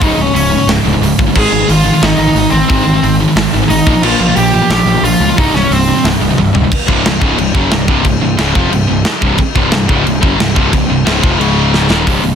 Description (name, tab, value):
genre	heavy metal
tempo	179 BPM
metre	4/4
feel	straight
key	C phrygian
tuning	A4 = 442 Hz
part	high-gain lead guitar	melody	0.0-6.0 s	C4 to Ab4	-15 LUFS	equal	distortion, tape echo
part	distorted electric guitar	riff	0.0-12.3 s	C2 to Bb3	-16 LUFS	left 11 dB	distortion
part	high-gain distorted guitar	riff	0.0-12.3 s	C2 to Bb3	-15 LUFS	right 9 dB	distortion
part	fuzz picked electric bass	bass	0.0-12.3 s	C1 to Db2	-16 LUFS	equal	overdrive
part	tight metal drum kit	drums	0.0-12.3 s	crash cymbal, hi-hat, kick drum, snare drum, toms	-15 LUFS	equal	none
room	light reverb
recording	dense, heavily limited modern master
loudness	-9 LUFS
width	side -8 dB against mid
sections	0.0-6.7 A section; 6.7-12.1 B section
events	half time 0.0-6.7; drum fill 6.4-6.7, 11.7-12.1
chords	0.0 Db5; 1.3 Ab; 3.9 Bb5; 5.4 C5; 11.4 Db5; 11.9 Eb5